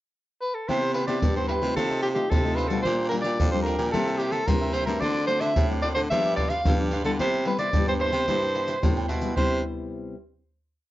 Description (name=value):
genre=samba and choro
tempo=111 BPM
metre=4/4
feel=straight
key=C major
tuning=A4 = 442 Hz
part: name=breathy soprano saxophone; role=melody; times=0.4-9.6 s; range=G4 to F5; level=-26 LUFS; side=equal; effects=plate reverb
part: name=cavaquinho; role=accompaniment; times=0.7-9.6 s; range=D4 to G5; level=-35 LUFS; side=right 4 dB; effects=none
part: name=nylon-string guitar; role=accompaniment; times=0.7-10.1 s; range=G2 to G4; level=-31 LUFS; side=left 3 dB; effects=none
part: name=raspy baritone saxophone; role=bass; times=0.7-9.6 s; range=F2 to D3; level=-29 LUFS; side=equal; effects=none
part: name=egg shaker, surdo and pandeiro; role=percussion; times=0.7-9.5 s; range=none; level=-27 LUFS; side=equal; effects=none
room=moderate studio reverb, RT60 0.5 s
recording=worn, warbling old tape, cassette tape, warbly pitch drift, nothing above 7.5 kHz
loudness=-22 LUFS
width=side -15 dB against mid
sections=0.0-0.7 pickup bar; 0.7-9.4 A section; 9.4-10.9 final chord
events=none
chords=0.0 N.C.; 0.7 Cmaj7; 1.8 F7/C; 2.9 Bb6; 3.9 C7; 5.0 D7; 6.1 G7; 7.2 Cmaj7